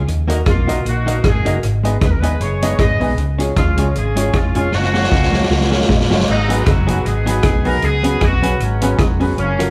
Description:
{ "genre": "ska", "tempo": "155 BPM", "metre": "4/4", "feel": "swing 55% on 8ths", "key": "unclear", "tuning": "A4 = 440 Hz", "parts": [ { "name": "clear horn section", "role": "melody", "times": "0.0-9.7 s", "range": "E#3 to D#5", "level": "-24 LUFS", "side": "equal", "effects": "none" }, { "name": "hollow-body jazz guitar", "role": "accompaniment", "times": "0.0-9.7 s", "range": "F#3 to A#4", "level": "-26 LUFS", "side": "equal", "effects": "none" }, { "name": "hollow-body short-scale fingered electric bass", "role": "bass", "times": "0.0-9.7 s", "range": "E#1 to D#2", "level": "-21 LUFS", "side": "equal", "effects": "none" }, { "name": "street-band drum kit", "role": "drums", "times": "0.1-9.7 s", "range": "crash cymbal, hi-hat, kick drum, rim click, snare drum", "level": "-19 LUFS", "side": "equal", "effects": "dub echo" }, { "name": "warm upright piano", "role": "stabs", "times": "0.3-9.7 s", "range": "C#4 to D#5", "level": "-26 LUFS", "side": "equal", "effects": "none" } ], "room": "moderate large studio reverb, RT60 1.3 s", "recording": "band playing live in one room", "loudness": "-16 LUFS", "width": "mono", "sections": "0.0-6.3 A section; 6.3-9.7 B section", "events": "drum fill 4.7-6.3", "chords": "0.1 D#m; 1.6 G#m; 3.2 C#; 4.7 F#; 6.3 G#m7; 7.8 C#7sus4" }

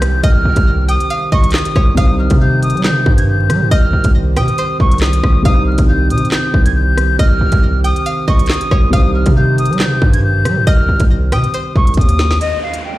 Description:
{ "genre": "hip hop, drill", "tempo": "138 BPM", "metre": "4/4", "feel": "half-time", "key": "C minor", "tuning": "A4 = 436 Hz", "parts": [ { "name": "silver concert flute", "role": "melody", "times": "0.0-13.0 s", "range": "Eb5 to Ab6", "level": "-19 LUFS", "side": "left 1 dB", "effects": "low-pass filter, digital delay" }, { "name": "dark concert grand piano", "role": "accompaniment", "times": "0.0-12.4 s", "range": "C3 to C5", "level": "-24 LUFS", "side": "left 1 dB", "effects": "low-pass filter" }, { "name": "dark analog pad", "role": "sustained chords", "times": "0.0-12.4 s", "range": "Eb3 to C5", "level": "-22 LUFS", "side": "right 2 dB", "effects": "chorus" }, { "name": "distorted 808-style bass", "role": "bass", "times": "0.0-12.4 s", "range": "C2 to G3", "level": "-14 LUFS", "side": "equal", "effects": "distortion" }, { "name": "drill drum kit", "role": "drums", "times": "0.0-12.8 s", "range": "handclaps, hi-hat, kick drum, rim click, snare drum", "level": "-14 LUFS", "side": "equal", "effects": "none" }, { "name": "downlifter", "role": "sound effects", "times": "0.0-2.0, 12.4-13.0 s", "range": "none", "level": "-30 LUFS", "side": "right 1 dB", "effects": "none" }, { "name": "string-like resonator pluck", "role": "second line", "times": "0.2-11.9 s", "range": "C5 to G5", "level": "-24 LUFS", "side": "equal", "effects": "chorus, digital delay" } ], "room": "digital ambience", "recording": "played on a big sound system in a bare room, large studio reverb, vinyl crackle", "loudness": "-11 LUFS", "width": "side -16 dB against mid", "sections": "0.0-12.4 A section", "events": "drum fill 12.0-12.4; break 12.4-13.0", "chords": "0.0 Cm; 12.4 N.C." }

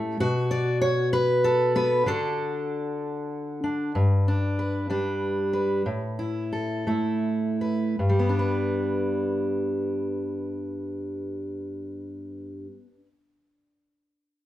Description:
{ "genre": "folk, solo fingerstyle acoustic guitar", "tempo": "50-66 BPM (dotted quarters)", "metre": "6/8", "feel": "rubato", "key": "G major", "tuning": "A4 = 440 Hz", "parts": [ { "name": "fingerpicked steel-string acoustic guitar", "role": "solo", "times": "0.0-13.1 s", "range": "G2 to D5", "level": "-24 LUFS", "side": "equal", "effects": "none" } ], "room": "moderate large studio reverb, RT60 0.9 s", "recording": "band playing live in one room", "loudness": "-24 LUFS", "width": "side -14 dB against mid", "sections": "0.0-3.9 A section; 3.9-8.0 B section; 8.0-12.6 C section", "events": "slowing down 3.9-8.0", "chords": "0.2 N.C.; 2.1 D; 3.9 G; 5.8 A5; 8.0 G" }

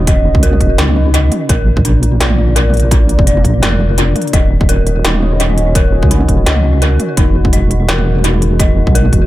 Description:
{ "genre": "half-time drum and bass", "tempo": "169 BPM", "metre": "4/4", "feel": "swing 55% on 16ths, half-time", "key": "unclear", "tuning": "A4 = 440 Hz", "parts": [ { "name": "dark analog pad", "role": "sustained chords", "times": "0.0-9.3 s", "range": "G#3 to Eb5", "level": "-21 LUFS", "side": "right 1 dB", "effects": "chorus, phaser, sidechain pumping" }, { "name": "dark detuned synth bell", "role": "arpeggios", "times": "0.0-9.3 s", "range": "D4 to Eb5", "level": "-20 LUFS", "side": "left 3 dB", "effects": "chorus, tape echo" }, { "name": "deep soft wobble bass", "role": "bass", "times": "0.0-9.3 s", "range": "Eb1 to Db2", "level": "-12 LUFS", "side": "equal", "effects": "chorus" }, { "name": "electronic kick drum", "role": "drums", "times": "0.1-9.2 s", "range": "none", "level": "-12 LUFS", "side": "equal", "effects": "none" }, { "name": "industrial drum kit", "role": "drums", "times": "0.1-9.2 s", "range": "hi-hat, snare drum, toms", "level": "-18 LUFS", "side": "right 1 dB", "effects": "tape echo" } ], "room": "little or no reverb", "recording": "echo-heavy mix", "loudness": "-9 LUFS", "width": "side -15 dB against mid", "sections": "0.0-9.3 A section", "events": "none", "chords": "0.0 Ebm7; 1.5 Bb; 4.3 Ebm7; 7.2 Eadd9" }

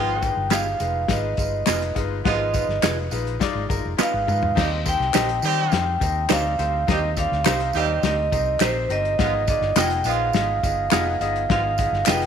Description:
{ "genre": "uptempo 1960s-style soul", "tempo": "104 BPM", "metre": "4/4", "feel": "straight", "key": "Eb major", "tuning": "A4 = 437 Hz", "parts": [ { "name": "vibraphone with medium hard mallets", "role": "melody", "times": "0.0-12.3 s", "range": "C5 to G5", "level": "-24 LUFS", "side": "right 1 dB", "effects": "none" }, { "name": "clear horn section", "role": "second line", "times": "0.0-11.6 s", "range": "F3 to G4", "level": "-29 LUFS", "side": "right 12 dB", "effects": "none" }, { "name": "bright upright piano", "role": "accompaniment", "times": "0.0-12.3 s", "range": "Ab3 to F5", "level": "-28 LUFS", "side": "left 9 dB", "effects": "none" }, { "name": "vintage muted fingered electric bass", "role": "bass", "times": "0.0-12.3 s", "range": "F1 to Eb3", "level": "-27 LUFS", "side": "right 1 dB", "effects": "none" }, { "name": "warm soul drum kit", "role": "drums", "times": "0.2-12.3 s", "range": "crash cymbal, hi-hat, kick drum, snare drum, toms", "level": "-25 LUFS", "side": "left 4 dB", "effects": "none" }, { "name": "tambourine and handclaps", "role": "percussion", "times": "0.2-12.2 s", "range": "none", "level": "-31 LUFS", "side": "left 3 dB", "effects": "none" }, { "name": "direct-recorded clean electric guitar", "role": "stabs", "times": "0.5-12.2 s", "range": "Cb4 to Eb5", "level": "-26 LUFS", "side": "right 14 dB", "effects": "phaser" } ], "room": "light reverb, small room ambience", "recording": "1960s-style stereo with parts hard left and right", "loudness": "-19 LUFS", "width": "side -8 dB against mid", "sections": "0.0-4.6 A section; 4.6-12.3 B section", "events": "drum fill 4.0-4.6", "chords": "0.0 Abm6; 4.6 Eb6; 9.2 Abm6" }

